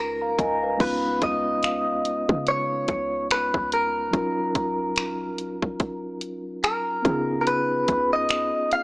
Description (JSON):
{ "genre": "contemporary R&B", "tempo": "72 BPM", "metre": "4/4", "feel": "swing 58% on 16ths", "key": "unclear", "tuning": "A4 = 440 Hz", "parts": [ { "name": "direct-recorded clean electric guitar", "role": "melody", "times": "0.0-8.8 s", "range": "Bb4 to F5", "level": "-24 LUFS", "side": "equal", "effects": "lush chorus, digital delay" }, { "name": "mellow tine electric piano", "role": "accompaniment", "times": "0.0-8.8 s", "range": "Gb3 to Bb5", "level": "-28 LUFS", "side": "equal", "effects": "medium stereo tremolo" }, { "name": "clean 808-style bass", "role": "bass", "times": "0.0-8.5 s", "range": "Eb1 to Db3", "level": "-30 LUFS", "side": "equal", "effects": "none" }, { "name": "trap drum kit", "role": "drums", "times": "0.4-8.8 s", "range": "crash cymbal, finger snaps, hi-hat, kick drum", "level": "-26 LUFS", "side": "equal", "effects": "overdrive" }, { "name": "celesta", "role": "texture", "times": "1.6-3.0 s", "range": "F5", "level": "-36 LUFS", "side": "equal", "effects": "none" } ], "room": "light reverb", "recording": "small speaker sound", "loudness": "-22 LUFS", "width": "side -24 dB against mid", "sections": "0.8-8.8 A section", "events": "none", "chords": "0.0 Db9; 4.1 Ebm7; 7.1 Db9", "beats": "| 0.80 1.64 2.47 3.30 | 4.13 4.97 5.80 6.63 | 7.47 8.30" }